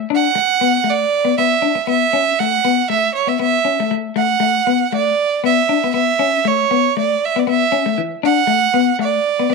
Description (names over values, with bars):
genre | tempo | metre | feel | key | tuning
highlife | 118 BPM | 4/4 | swing 54% on 16ths | D major | A4 = 440 Hz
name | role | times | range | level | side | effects
clean electric guitar | accompaniment | 0.0-9.5 s | E3 to D4 | -18 LUFS | left 20 dB | none
clear violin | melody | 0.1-9.5 s | C#5 to F#5 | -16 LUFS | right 8 dB | none
room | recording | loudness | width
moderate spring reverb, RT60 1.5 s, small room ambience | 1960s-style stereo with parts hard left and right | -14 LUFS | side -3 dB against mid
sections
0.0-9.5 A section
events
none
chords
0.1 D; 1.1 E5; 2.1 A; 4.2 Bm7/A; 5.2 E5; 6.2 A; 8.2 D